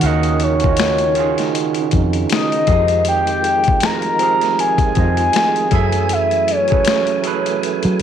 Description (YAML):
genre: R&B, neo-soul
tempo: 79 BPM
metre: 4/4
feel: swing 58% on 16ths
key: Eb dorian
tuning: A4 = 440 Hz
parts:
  - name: expressive synth lead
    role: melody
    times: 0.0-8.0 s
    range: Db5 to Bb5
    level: -17 LUFS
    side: left 1 dB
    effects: chorus
  - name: overdriven tine electric piano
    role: accompaniment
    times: 0.0-8.0 s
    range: Eb3 to Gb5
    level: -21 LUFS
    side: right 12 dB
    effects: none
  - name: percussive tonewheel organ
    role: sustained chords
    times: 0.0-8.0 s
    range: Db3 to Ab5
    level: -26 LUFS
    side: right 1 dB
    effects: slow rotary speaker, overdrive, chorus vibrato
  - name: vintage muted fingered electric bass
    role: bass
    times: 0.0-8.0 s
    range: Eb2 to Gb3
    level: -20 LUFS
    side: left 1 dB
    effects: none
  - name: boom bap sampler-style drum kit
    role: drums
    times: 0.0-8.0 s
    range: finger snaps, hi-hat, kick drum, snare drum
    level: -21 LUFS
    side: left 4 dB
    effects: none
room: light reverb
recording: 1960s-style stereo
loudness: -14 LUFS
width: side -9 dB against mid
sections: 0.0-8.0 A section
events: none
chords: 0.0 Ebm9; 2.7 Fm9; 5.7 Gbm9